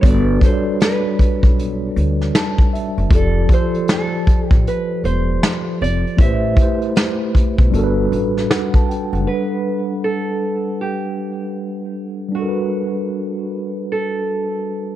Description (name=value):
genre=lo-fi hip hop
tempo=78 BPM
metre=4/4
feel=swing 64% on 16ths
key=G major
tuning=A4 = 437 Hz
part: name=nylon-string guitar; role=melody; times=0.0-15.0 s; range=F#4 to E5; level=-25 LUFS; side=right 4 dB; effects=low-pass filter, analog delay
part: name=mellow tine electric piano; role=accompaniment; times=0.0-15.0 s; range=F3 to A5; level=-21 LUFS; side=equal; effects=medium stereo tremolo, cassette tape, low-pass filter
part: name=upright bass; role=bass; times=0.0-9.2 s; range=E1 to D2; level=-19 LUFS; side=equal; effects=none
part: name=vintage brush drum kit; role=drums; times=0.0-9.3 s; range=hi-hat, kick drum, snare drum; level=-15 LUFS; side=equal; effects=none
room=small room reverb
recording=dark, warm production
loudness=-15 LUFS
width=side -13 dB against mid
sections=0.0-9.3 A section; 9.3-15.0 B section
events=tine electric piano fill 2.0-3.1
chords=0.0 Gmaj9; 3.1 F69; 6.2 Am9; 7.7 Gmaj7; 9.3 Gmaj9